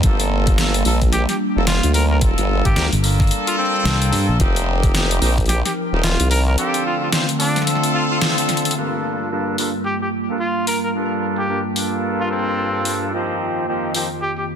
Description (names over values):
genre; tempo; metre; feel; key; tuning
glitch hop; 110 BPM; 4/4; swing 60% on 16ths; G minor; A4 = 440 Hz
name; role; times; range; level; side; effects
warbly tape-like pad; sustained chords; 0.0-14.6 s; F2 to Bb4; -24 LUFS; right 1 dB; chorus, built-in reverb, sidechain pumping
bright horn section; stabs; 0.0-14.1 s; G2 to C5; -23 LUFS; equal; vintage 12-bit sampler grit, sidechain pumping, low-pass filter, ping-pong delay
formant-sweep wobble bass; bass; 0.0-6.6 s; Eb1 to D2; -18 LUFS; equal; chorus
dubstep drum kit; drums; 0.0-14.1 s; hi-hat, snare drum; -22 LUFS; left 1 dB; overdrive
electronic kick drum; drums; 0.0-5.5 s; none; -18 LUFS; equal; overdrive
warm trumpet; melody; 1.1-14.4 s; C4 to Bb4; -25 LUFS; equal; vintage 12-bit sampler grit, ping-pong delay
fingered electric bass; bass; 2.7-4.4 s; G1 to G2; -18 LUFS; equal; none
room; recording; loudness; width
light reverb; dense, heavily limited modern master; -16 LUFS; side -8 dB against mid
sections
0.0-8.8 A section; 8.8-14.6 B section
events
drop 0.0-8.8; band accent 8.2; drum fill 8.5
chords
0.0 Gm7; 4.4 F7sus4; 6.6 Dm7; 8.8 Gm7; 13.1 F7sus4